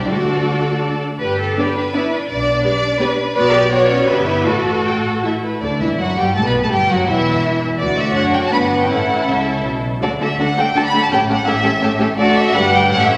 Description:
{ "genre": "quick classical-period movement for string orchestra", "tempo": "153-172 BPM", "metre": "3/4", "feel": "rubato", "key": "G major, D major from 3.4 s", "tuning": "A4 = 435 Hz", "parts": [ { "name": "warm studio violin section", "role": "melody", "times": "0.0-13.2 s", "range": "B4 to B5", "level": "-22 LUFS", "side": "equal", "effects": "none" }, { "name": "rich studio violin section", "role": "second line", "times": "0.0-13.2 s", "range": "D4 to D5", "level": "-22 LUFS", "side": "equal", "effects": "none" }, { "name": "dark studio viola section", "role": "accompaniment", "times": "0.0-13.2 s", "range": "D3 to G4", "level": "-22 LUFS", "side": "equal", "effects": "none" }, { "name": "warm studio cello section", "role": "bass", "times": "0.0-13.2 s", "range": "D2 to B4", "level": "-26 LUFS", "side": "equal", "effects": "none" }, { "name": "warm studio double bass section", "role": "bass", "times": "0.0-13.2 s", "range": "E1 to D2", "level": "-27 LUFS", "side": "equal", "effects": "none" } ], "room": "wet scoring stage reverb, RT60 1.5 s", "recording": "none", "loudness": "-17 LUFS", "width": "mono", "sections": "0.0-5.6 A section; 5.6-13.2 B section", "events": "none", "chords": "0.1 D; 1.2 G; 2.3 G/B; 3.4 Bm; 4.1 Em/G; 4.5 D/A; 5.2 A5; 5.6 D; 6.7 Emadd9; 7.8 D; 8.5 G; 8.9 A; 10.0 D; 11.1 A7; 12.2 D; 12.5 G" }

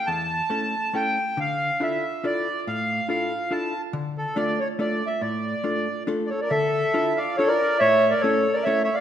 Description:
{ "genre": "musette", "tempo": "140 BPM", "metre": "3/4", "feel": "swing 53% on 8ths", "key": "D harmonic minor", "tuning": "A4 = 439 Hz", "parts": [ { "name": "accordion", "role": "melody", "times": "0.0-9.0 s", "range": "A4 to A5", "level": "-22 LUFS", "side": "equal", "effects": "none" }, { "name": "hollow-body jazz guitar", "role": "accompaniment", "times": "0.1-8.9 s", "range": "E2 to A4", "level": "-28 LUFS", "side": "left 1 dB", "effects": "none" } ], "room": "moderate scoring stage reverb, RT60 1.5 s", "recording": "minimal, uncompressed stereo recording", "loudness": "-21 LUFS", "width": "side -10 dB against mid", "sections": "0.0-6.5 A section; 6.5-9.0 B section", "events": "none", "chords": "0.0 A; 1.4 Dmadd9; 3.9 Dm; 6.5 Dmadd9; 7.8 A" }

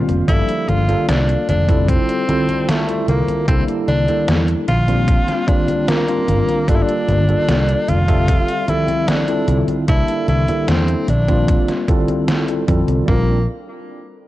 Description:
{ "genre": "vaporwave", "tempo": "75 BPM", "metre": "4/4", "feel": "straight", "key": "Bb lydian", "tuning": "A4 = 441 Hz", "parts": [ { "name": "tine electric piano", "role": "accompaniment", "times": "0.0-13.4 s", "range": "F3 to E5", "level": "-21 LUFS", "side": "equal", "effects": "medium stereo tremolo, lush chorus, vintage 12-bit sampler grit" }, { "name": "mellow fretless electric bass", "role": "bass", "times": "0.1-13.5 s", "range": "F1 to F2", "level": "-18 LUFS", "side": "equal", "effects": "none" }, { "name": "detuned 8-bit digital drum machine", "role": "drums", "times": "0.1-13.0 s", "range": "congas, hi-hat, snare drum", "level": "-22 LUFS", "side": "equal", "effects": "overdrive" }, { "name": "bright tenor saxophone", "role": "melody", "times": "0.3-13.5 s", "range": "A3 to F4", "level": "-22 LUFS", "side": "equal", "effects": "analog delay" }, { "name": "detuned 8-bit digital drum machine", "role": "drums", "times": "0.3-13.3 s", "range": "kick drum, toms", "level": "-17 LUFS", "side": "equal", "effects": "overdrive" } ], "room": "light reverb", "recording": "worn, warbling old tape, cassette tape, warbly pitch drift", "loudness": "-14 LUFS", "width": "side -15 dB against mid", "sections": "0.0-13.1 A section; 13.1-14.3 B section", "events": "none", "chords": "0.3 Gm9; 1.9 Fmaj9; 3.5 C13; 4.7 Bb69; 6.7 Gm9; 8.3 Fmaj9; 9.9 C13; 11.1 Bb69; 12.3 Fmaj9; 13.1 Bb69" }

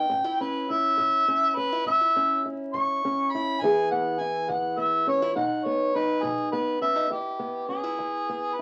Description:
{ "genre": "acoustic country blues, solo or duo", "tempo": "69 BPM (dotted quarters)", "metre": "12/8", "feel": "straight", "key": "E major", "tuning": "A4 = 436 Hz", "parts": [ { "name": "warm harmonica", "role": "melody", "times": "0.0-8.6 s", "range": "G4 to C#6", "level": "-27 LUFS", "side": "equal", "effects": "none" }, { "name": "fingerpicked old ladder-braced acoustic guitar", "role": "accompaniment", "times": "0.0-8.6 s", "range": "E2 to G#4", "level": "-31 LUFS", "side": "equal", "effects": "none" }, { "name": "kick drum", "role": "drums", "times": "0.1-6.4 s", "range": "none", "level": "-54 LUFS", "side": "equal", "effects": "none" } ], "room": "wet small room ambience, RT60 0.5 s", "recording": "very old 78 rpm record, vinyl crackle", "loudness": "-25 LUFS", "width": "mono", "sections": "0.0-7.1 A section; 7.1-8.6 B section", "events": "harmonica solo 0.0-7.1", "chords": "0.1 A; 3.6 E; 5.4 B; 7.1 E" }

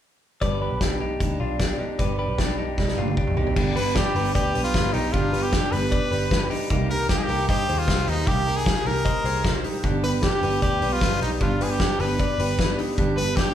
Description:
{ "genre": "jangly indie pop", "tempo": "153 BPM", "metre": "4/4", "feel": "straight", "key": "unclear", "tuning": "A4 = 441 Hz", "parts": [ { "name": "picked steel-string acoustic guitar", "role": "accompaniment", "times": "0.4-13.5 s", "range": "G2 to G4", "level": "-29 LUFS", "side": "right 2 dB", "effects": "none" }, { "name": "direct-recorded clean electric guitar", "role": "arpeggios", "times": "0.4-13.5 s", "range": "D4 to Eb5", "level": "-28 LUFS", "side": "left 1 dB", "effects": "spring reverb" }, { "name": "vintage muted picked electric bass", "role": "bass", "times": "0.4-13.4 s", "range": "G1 to G2", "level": "-28 LUFS", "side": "equal", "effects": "none" }, { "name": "loose indie drum kit", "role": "drums", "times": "0.4-13.5 s", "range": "crash cymbal, hi-hat, kick drum, snare drum, toms", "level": "-25 LUFS", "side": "equal", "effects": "none" }, { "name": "brilliant trumpet", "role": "melody", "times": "3.8-13.5 s", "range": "Eb4 to B4", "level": "-26 LUFS", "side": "equal", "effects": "none" } ], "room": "wet large studio reverb, RT60 1.3 s", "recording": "band playing live in one room", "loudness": "-20 LUFS", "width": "side -10 dB against mid", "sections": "0.4-3.6 A section; 3.6-13.5 B section", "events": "drum fill 2.8-3.6", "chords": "0.4 G; 6.7 Cm7; 9.8 G" }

